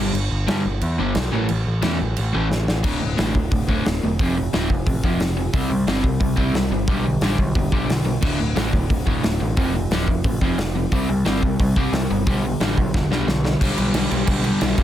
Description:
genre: punk rock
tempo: 178 BPM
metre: 4/4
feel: straight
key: unclear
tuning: A4 = 441 Hz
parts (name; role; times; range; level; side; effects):
- crunchy overdriven guitar; riff; 0.0-14.8 s; D2 to C4; -22 LUFS; equal; none
- growling picked electric bass; bass; 0.0-14.8 s; D1 to G2; -24 LUFS; equal; overdrive
- big rock drum kit; drums; 0.1-14.8 s; crash cymbal, hi-hat, kick drum, snare drum; -23 LUFS; equal; none
room: little or no reverb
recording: dense, heavily limited modern master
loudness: -18 LUFS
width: side -11 dB against mid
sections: 0.0-2.8 A section; 2.8-13.6 B section; 13.6-14.8 C section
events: drum fill 2.5-2.8, 12.9-13.6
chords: 0.0 G; 1.3 A5; 2.8 D5; 4.2 F5; 5.5 C5; 6.9 G; 8.2 D5; 9.6 F5; 10.9 C5; 12.3 G

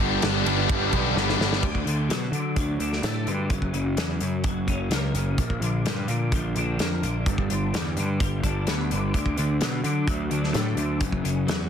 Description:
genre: quiet-loud alternative rock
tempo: 128 BPM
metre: 4/4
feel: straight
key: D major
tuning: A4 = 440 Hz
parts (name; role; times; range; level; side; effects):
- ensemble organ-string; sustained chords; 0.0-1.6 s; D4 to G5; -37 LUFS; left 3 dB; none
- fuzz guitar; riff; 0.0-1.6 s; G2 to D4; -28 LUFS; right 15 dB; distortion
- tight distorted guitar; riff; 0.0-1.6 s; G2 to D4; -25 LUFS; left 15 dB; distortion
- fuzz picked electric bass; bass; 0.0-11.7 s; F#1 to D3; -27 LUFS; right 1 dB; overdrive
- loose indie drum kit; drums; 0.2-11.6 s; crash cymbal, hi-hat, kick drum, ride cymbal, snare drum; -28 LUFS; equal; soft clipping on snare
- twelve-string electric guitar; arpeggios; 1.6-11.7 s; F#2 to D4; -28 LUFS; left 2 dB; ensemble chorus
room: studio ambience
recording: dense, heavily limited modern master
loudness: -22 LUFS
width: side -8 dB against mid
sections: 0.0-1.6 A section; 1.6-11.7 B section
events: drum fill 1.2-1.6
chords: 0.0 G; 1.6 D; 3.5 F#; 5.4 Bb; 7.3 G; 9.1 D; 11.0 F#5

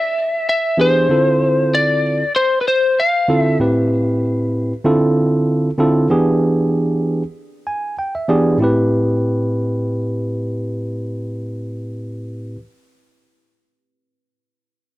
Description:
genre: blues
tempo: 96 BPM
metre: 4/4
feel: straight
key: A minor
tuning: A4 = 439 Hz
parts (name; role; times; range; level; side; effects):
- lightly driven lead guitar; melody; 0.0-3.6 s; B4 to F5; -16 LUFS; left 2 dB; none
- bright tine electric piano; accompaniment; 0.8-12.6 s; A2 to G#5; -16 LUFS; right 1 dB; none
room: little or no reverb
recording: dry, close 1970s-style studio recording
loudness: -15 LUFS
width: side -17 dB against mid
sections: 0.0-8.6 A section; 8.6-11.1 B section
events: tine electric piano fill 7.4-8.6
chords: 0.0 E7#9; 1.1 Dm7; 3.6 Am7; 4.9 Dm7; 6.1 E7#9; 8.6 Am7

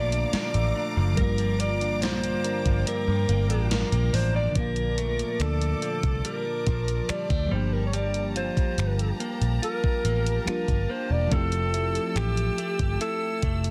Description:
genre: contemporary R&B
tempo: 71 BPM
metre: 4/4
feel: straight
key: G dorian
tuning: A4 = 445 Hz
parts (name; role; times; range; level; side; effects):
- warm alto saxophone; melody; 0.0-13.5 s; G4 to D5; -32 LUFS; equal; tape echo
- FM electric piano; accompaniment; 0.0-13.7 s; D3 to G4; -36 LUFS; equal; phaser
- clear studio string section; sustained chords; 0.0-13.7 s; G4 to E6; -41 LUFS; equal; none
- direct-recorded clean electric guitar; arpeggios; 0.0-13.7 s; G2 to G4; -35 LUFS; equal; spring reverb
- vintage muted picked electric bass; bass; 0.0-13.7 s; E1 to G2; -28 LUFS; equal; none
- gated 80s digital drum machine; drums; 0.1-13.7 s; finger snaps, hi-hat, kick drum, snare drum; -30 LUFS; equal; gated reverb, gated reverb snare
- soft synth bell; texture; 2.4-3.8 s; Bb4; -44 LUFS; equal; none
room: little or no reverb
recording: dense, heavily limited modern master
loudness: -26 LUFS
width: mono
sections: 0.0-4.6 A section; 4.6-13.7 B section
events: kick muted 2.9-4.6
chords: 0.0 Bbmaj7; 1.2 Gm7; 4.6 Bbmaj7; 7.5 Gm9; 11.3 Fmaj9

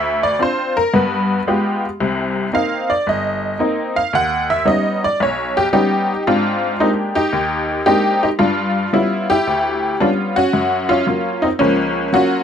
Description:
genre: solo jazz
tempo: 112 BPM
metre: 4/4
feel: swing 68% on 8ths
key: unclear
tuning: A4 = 440 Hz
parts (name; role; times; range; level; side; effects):
- honky-tonk upright piano; solo; 0.0-12.4 s; G1 to Gb5; -15 LUFS; equal; none
room: light reverb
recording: close, detailed microphones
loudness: -15 LUFS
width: side -8 dB against mid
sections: 0.0-6.3 A section; 6.3-12.4 B section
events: honky-tonk piano solo 0.0-6.3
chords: 0.0 Dm7; 0.9 G7b9; 2.0 Cm7; 4.1 Ebaug7; 6.3 Abmaj9#11; 8.4 G7#11; 10.5 Gbmaj7

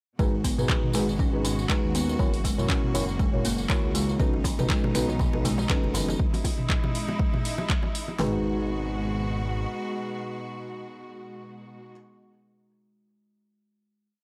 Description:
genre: afro house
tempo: 120 BPM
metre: 4/4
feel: swing 56% on 16ths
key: G# minor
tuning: A4 = 440 Hz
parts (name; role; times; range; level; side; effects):
- bright studio string section; sustained chords; 0.2-11.9 s; B2 to F#4; -38 LUFS; equal; sidechain pumping
- buzzing kalimba; arpeggios; 0.2-8.4 s; D#3 to C#4; -34 LUFS; equal; sidechain pumping, analog delay
- felt-muted upright piano; stabs; 0.2-11.9 s; D#4 to C#5; -36 LUFS; equal; sidechain pumping, analog delay
- dark detuned saw bass; bass; 0.2-9.7 s; F#1 to G#2; -34 LUFS; equal; tube saturation, sidechain pumping
- deep house drum kit; drums; 0.2-8.3 s; kick drum, snare drum, toms; -29 LUFS; equal; overdrive
- tambourine; percussion; 0.2-6.2 s; none; -41 LUFS; equal; none
- afro-pop drum kit; drums; 0.4-8.1 s; finger snaps, handclaps, hi-hat, toms; -33 LUFS; equal; none
- congas; percussion; 4.2-6.1 s; none; -37 LUFS; equal; none
- bongos; percussion; 4.3-8.2 s; none; -37 LUFS; equal; none
room: little or no reverb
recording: dry, gritty hardware recording, transformer saturation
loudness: -26 LUFS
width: mono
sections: 0.2-8.2 drop; 8.2-12.2 final chord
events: drop 0.2-8.2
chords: 0.2 G#m7; 2.2 F#7; 4.2 B7; 6.2 Emaj7; 8.2 G#m7

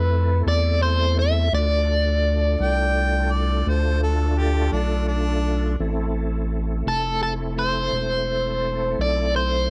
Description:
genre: slow blues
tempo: 56 BPM (dotted quarters)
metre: 12/8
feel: straight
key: A minor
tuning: A4 = 439 Hz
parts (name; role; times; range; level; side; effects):
- biting overdriven guitar; melody; 0.0-9.7 s; A4 to E5; -26 LUFS; equal; tremolo
- bright tonewheel organ; sustained chords; 0.0-9.7 s; A3 to A4; -31 LUFS; equal; overdrive, chorus vibrato, slow rotary speaker
- round analog bass; bass; 0.0-9.7 s; E1 to F2; -24 LUFS; equal; none
- warm harmonica; second line; 2.6-5.8 s; D4 to G5; -29 LUFS; equal; none
room: little or no reverb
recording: none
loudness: -22 LUFS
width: mono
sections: 0.0-9.7 A section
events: none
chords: 0.0 Am; 1.5 Dm; 5.8 Am

